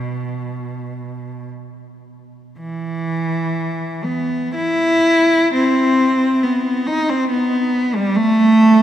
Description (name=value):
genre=classical, free, expressive piece for unaccompanied cello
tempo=53-73 BPM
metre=4/4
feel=rubato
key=unclear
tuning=A4 = 441 Hz
part: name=rich cello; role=solo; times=0.0-8.8 s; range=B2 to E4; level=-15 LUFS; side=equal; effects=none
room=wet cathedral reverb, RT60 4.2 s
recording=none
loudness=-15 LUFS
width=side -11 dB against mid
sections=0.0-8.8 A section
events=none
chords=none